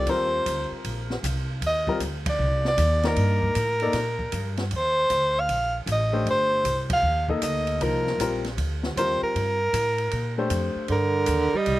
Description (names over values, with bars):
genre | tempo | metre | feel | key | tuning
modal jazz | 155 BPM | 4/4 | swing 65% on 8ths | C dorian | A4 = 440 Hz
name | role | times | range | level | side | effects
breathy soprano saxophone | melody | 0.0-11.8 s | Bb4 to F5 | -24 LUFS | equal | slapback echo
clear upright piano | accompaniment | 0.0-10.9 s | F3 to Eb5 | -28 LUFS | left 4 dB | slapback echo
upright bass | bass | 0.0-11.8 s | G1 to Bb2 | -27 LUFS | equal | none
open jazz drum kit | drums | 0.1-11.8 s | hi-hat, kick drum, ride cymbal, snare drum | -33 LUFS | right 1 dB | none
breathy alto saxophone | second line | 10.9-11.8 s | D3 to G3 | -24 LUFS | right 4 dB | none
room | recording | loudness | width
little or no reverb | recorded outdoors, with no room sound | -22 LUFS | side -16 dB against mid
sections
0.0-11.8 A section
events
band accent 2.2, 6.8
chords
0.0 Cm9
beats
| 0.08 0.47 0.85 1.24 | 1.62 2.01 2.40 2.79 | 3.17 3.56 3.94 4.33 | 4.72 5.11 5.49 5.88 | 6.26 6.65 7.04 7.42 | 7.81 8.19 8.58 8.96 | 9.35 9.73 10.12 10.51 | 10.89 11.28 11.66